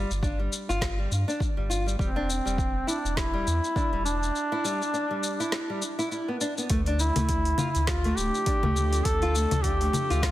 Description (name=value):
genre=organic downtempo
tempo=102 BPM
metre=4/4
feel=swing 57% on 16ths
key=unclear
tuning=A4 = 440 Hz
part: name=nylon-string guitar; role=arpeggios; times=0.0-10.3 s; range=G3 to F4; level=-31 LUFS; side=left 1 dB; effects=digital delay
part: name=warm sub bass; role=bass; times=0.0-10.3 s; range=D1 to G2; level=-28 LUFS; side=equal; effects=tube saturation, sidechain pumping
part: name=afro-pop drum kit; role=drums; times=0.1-10.3 s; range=congas, hi-hat, shaker, snare drum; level=-32 LUFS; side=left 2 dB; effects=overdrive
part: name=electronic kick drum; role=drums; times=0.2-10.3 s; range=none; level=-29 LUFS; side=equal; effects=overdrive
part: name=warm duduk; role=melody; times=2.0-10.3 s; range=C4 to A4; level=-29 LUFS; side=equal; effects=vintage 12-bit sampler grit, tape echo
part: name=bowed-like drone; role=sustained chords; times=7.7-10.3 s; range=C3 to D4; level=-38 LUFS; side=left 2 dB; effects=built-in reverb, sidechain pumping
room=light reverb, digital ambience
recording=dense, heavily limited modern master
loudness=-24 LUFS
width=side -14 dB against mid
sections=0.0-6.7 A section; 6.7-10.3 B section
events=none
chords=0.0 G5; 2.0 Em7; 6.7 Dm7